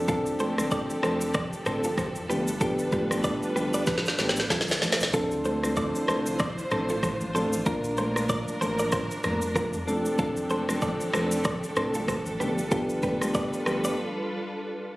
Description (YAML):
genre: afrobeats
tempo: 95 BPM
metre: 4/4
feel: swing 58% on 16ths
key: D minor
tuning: A4 = 440 Hz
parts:
  - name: soft electric-piano-like synth keys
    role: accompaniment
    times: 0.0-14.0 s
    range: F3 to Bb4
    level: -29 LUFS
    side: equal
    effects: chorus, tremolo
  - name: warm symphonic string section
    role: sustained chords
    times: 0.0-15.0 s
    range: D3 to C5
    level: -33 LUFS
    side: equal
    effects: none
  - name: round analog bass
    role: bass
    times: 0.0-13.9 s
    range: F1 to F2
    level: -38 LUFS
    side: equal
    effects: none
  - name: direct-recorded clean electric guitar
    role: riff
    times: 0.1-13.9 s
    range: F4 to D5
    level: -31 LUFS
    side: right 1 dB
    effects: digital delay
  - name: afro-pop drum kit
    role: drums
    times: 0.1-14.0 s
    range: kick drum, rim click, shaker, snare drum, toms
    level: -29 LUFS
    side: equal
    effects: none
  - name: congas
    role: percussion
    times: 0.4-13.8 s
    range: none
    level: -34 LUFS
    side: equal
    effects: none
room: light reverb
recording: recorded on a phone in the room, studio reverb, compression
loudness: -24 LUFS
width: side -19 dB against mid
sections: 0.0-5.1 A section; 5.1-15.0 B section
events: drum fill 3.9-5.1; break 14.0-15.0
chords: 0.0 F6; 2.3 G7; 5.1 Dm7; 7.7 Bb; 9.9 F6; 12.4 G7